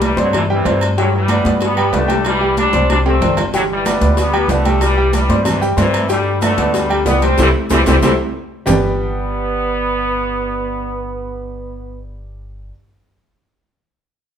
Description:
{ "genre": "latin, salsa", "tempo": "187 BPM", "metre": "4/4", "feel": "straight", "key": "G major", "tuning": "A4 = 440 Hz", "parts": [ { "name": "bright trombone section", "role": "melody", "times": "0.0-12.0 s", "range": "C3 to D4", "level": "-19 LUFS", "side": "equal", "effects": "none" }, { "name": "clear concert grand piano", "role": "accompaniment", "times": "0.0-12.7 s", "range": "G3 to G5", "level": "-19 LUFS", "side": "equal", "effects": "none" }, { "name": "upright bass", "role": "bass", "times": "0.0-12.7 s", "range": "G1 to G2", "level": "-19 LUFS", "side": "equal", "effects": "none" }, { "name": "congas", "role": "percussion", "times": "0.0-8.7 s", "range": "none", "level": "-23 LUFS", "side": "right 1 dB", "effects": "none" }, { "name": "cowbell and bongos", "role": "percussion", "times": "0.0-8.7 s", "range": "none", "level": "-25 LUFS", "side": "left 4 dB", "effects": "none" }, { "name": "timbales and agogo bells", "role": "percussion", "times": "0.0-8.7 s", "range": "none", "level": "-24 LUFS", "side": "right 3 dB", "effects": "none" }, { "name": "maracas", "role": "percussion", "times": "3.5-8.7 s", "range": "none", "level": "-33 LUFS", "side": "left 4 dB", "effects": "none" } ], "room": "moderate large studio reverb, RT60 1.1 s", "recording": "band playing live in one room", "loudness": "-13 LUFS", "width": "side -8 dB against mid", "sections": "0.0-8.7 A section; 8.7-11.2 B section", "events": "drum fill 2.9-3.5, 7.4-8.7; band accent 7.4-8.7", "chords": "0.0 Cadd9; 1.0 G; 2.3 Cadd9; 3.5 G; 4.8 Cadd9; 6.1 G; 7.4 C; 8.7 G" }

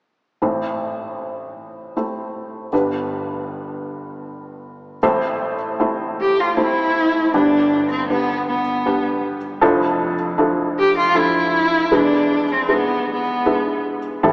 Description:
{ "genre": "acoustic folk-pop ballad", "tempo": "78 BPM", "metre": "3/4", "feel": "straight", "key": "A minor", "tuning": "A4 = 440 Hz", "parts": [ { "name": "felt-muted upright piano", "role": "accompaniment", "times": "0.4-14.3 s", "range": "F1 to C5", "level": "-19 LUFS", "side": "equal", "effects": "none" }, { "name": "dark cello", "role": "melody", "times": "6.2-13.8 s", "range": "B3 to G4", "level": "-17 LUFS", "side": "equal", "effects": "none" }, { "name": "sustaining fretless electric bass", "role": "bass", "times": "14.2-14.3 s", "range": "A1", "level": "-24 LUFS", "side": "equal", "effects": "none" } ], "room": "wet church reverb, RT60 3.6 s", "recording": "recorded in a church or concert hall, small speaker sound", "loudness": "-16 LUFS", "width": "side -30 dB against mid", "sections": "0.4-5.0 A section; 5.0-14.3 B section", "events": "none", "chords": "0.4 Am; 2.7 G; 5.0 Am; 7.3 G; 9.6 Dmadd9/F; 11.9 E7" }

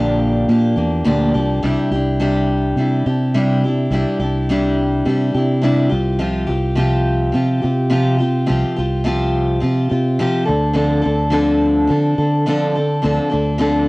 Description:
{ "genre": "folk rock and heartland rock", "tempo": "105 BPM", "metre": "4/4", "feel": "straight", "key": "C mixolydian", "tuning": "A4 = 437 Hz", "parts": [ { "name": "picked steel-string acoustic guitar", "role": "accompaniment", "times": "0.0-13.9 s", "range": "Bb2 to A4", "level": "-17 LUFS", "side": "left 1 dB", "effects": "cassette tape" }, { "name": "fingered electric bass", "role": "bass", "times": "0.0-13.9 s", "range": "Bb1 to D3", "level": "-18 LUFS", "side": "equal", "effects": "tube saturation" } ], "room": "light reverb, small room ambience", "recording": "home recording on cassette", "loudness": "-15 LUFS", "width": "side -24 dB against mid", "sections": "0.0-1.6 A section; 1.6-13.9 A section", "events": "none", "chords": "0.0 Bb6; 1.6 Cadd9; 5.9 Fsus2/C; 10.5 Dm7" }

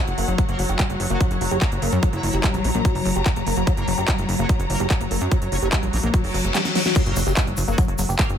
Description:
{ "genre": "psychedelic trance", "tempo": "146 BPM", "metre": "4/4", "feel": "straight", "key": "F# major", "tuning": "A4 = 437 Hz", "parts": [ { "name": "swarming drone", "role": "sustained chords", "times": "0.0-8.4 s", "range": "F#3", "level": "-28 LUFS", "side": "left 1 dB", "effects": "built-in reverb, sidechain pumping" }, { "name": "clear studio string section", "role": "texture", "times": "0.0-7.0 s", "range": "F#4 to A#5", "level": "-30 LUFS", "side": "left 1 dB", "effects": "sidechain pumping" }, { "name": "plucky analog bass", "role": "bass", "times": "0.1-8.4 s", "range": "F#1 to F#2", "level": "-24 LUFS", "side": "equal", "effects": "none" }, { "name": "big-room dance drum kit", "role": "drums", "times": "0.1-8.4 s", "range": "crash cymbal, handclaps, hi-hat, snare drum", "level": "-27 LUFS", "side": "equal", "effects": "small room reverb" }, { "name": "liquid acid bass", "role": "riff", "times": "0.2-8.2 s", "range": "F#3 to G4", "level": "-28 LUFS", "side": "moving between left 5 dB and right 3 dB", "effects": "phaser, auto-pan, sidechain pumping, ping-pong delay" }, { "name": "electronic kick drum", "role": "drums", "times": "0.4-8.3 s", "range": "none", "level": "-21 LUFS", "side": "equal", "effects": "small room reverb" }, { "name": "metallic wobble bass", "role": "second line", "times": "0.5-8.3 s", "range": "F#3 to E4", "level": "-36 LUFS", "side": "right 2 dB", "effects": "none" }, { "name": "reverse cymbal and impact", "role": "sound effects", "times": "6.2-8.4 s", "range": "none", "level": "-29 LUFS", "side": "left 3 dB", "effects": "none" }, { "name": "tube shaker", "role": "percussion", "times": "7.0-8.3 s", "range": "none", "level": "-33 LUFS", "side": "left 5 dB", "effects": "none" } ], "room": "little or no reverb", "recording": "none", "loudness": "-18 LUFS", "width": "side -9 dB against mid", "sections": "0.0-7.0 A section; 7.0-8.4 B section", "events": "reverse cymbal 6.2-7.0; drum fill 6.5-7.0; drop 7.0-8.4; impact 7.0-8.4", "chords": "0.0 F#5" }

